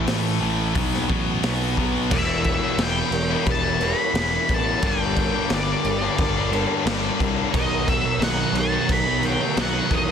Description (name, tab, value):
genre	quiet-loud alternative rock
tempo	88 BPM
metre	4/4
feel	straight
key	unclear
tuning	A4 = 441 Hz
part	thick fuzz guitar	riff	0.0-2.1, 7.5-10.1 s	A2 to D#4	-26 LUFS	right 12 dB	distortion
part	tight distorted guitar	riff	0.0-10.1 s	G2 to E4	-27 LUFS	left 17 dB	distortion
part	fuzz picked electric bass	bass	0.0-10.1 s	E1 to E2	-27 LUFS	equal	overdrive
part	raw garage drum kit	drums	0.1-10.1 s	crash cymbal, hi-hat, kick drum, snare drum	-24 LUFS	right 1 dB	none
part	octave-fuzz lead guitar	melody	2.1-10.1 s	D5 to B5	-26 LUFS	left 2 dB	distortion
part	fuzz guitar	riff	2.1-10.1 s	E2 to B3	-28 LUFS	equal	distortion
room	small room ambience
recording	dense, heavily limited modern master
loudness	-19 LUFS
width	side -8 dB against mid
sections	0.0-2.1 A section; 2.1-10.1 B section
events	none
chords	0.0 A5; 0.7 B5; 2.1 Em; 4.8 Gm; 7.5 B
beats	0.07 0.75 1.43 | 2.11 2.79 3.47 4.15 | 4.83 5.50 6.18 6.86 | 7.54 8.22 8.90 9.57